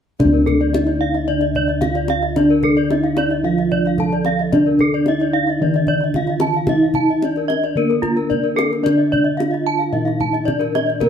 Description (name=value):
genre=Balinese gamelan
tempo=111 BPM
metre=4/4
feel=straight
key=D pelog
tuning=A4 = 440 Hz
part: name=gamelan-type bronze metallophone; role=melody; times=0.2-11.1 s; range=Bb3 to A4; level=-22 LUFS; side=equal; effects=none
part: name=gamelan-type bronze metallophone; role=accompaniment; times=0.2-11.1 s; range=D3 to Bb3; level=-25 LUFS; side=right 3 dB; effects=none
part: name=gamelan-type bronze metallophone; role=arpeggios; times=0.2-11.1 s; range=A4 to A5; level=-23 LUFS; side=left 5 dB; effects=none
part: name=gamelan-type bossed gongs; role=bass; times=0.2-11.1 s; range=D2 to Bb4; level=-19 LUFS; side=equal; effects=none
part: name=kendang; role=percussion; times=0.2-11.1 s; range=none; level=-26 LUFS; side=left 1 dB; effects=none
part: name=gamelan-type bronze metallophone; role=arpeggios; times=0.5-10.9 s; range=F4 to A5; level=-23 LUFS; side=right 2 dB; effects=none
room=moderate stone room reverb, RT60 1.1 s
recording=band playing live in one room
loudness=-15 LUFS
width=side -8 dB against mid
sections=0.2-11.1 A section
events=none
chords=none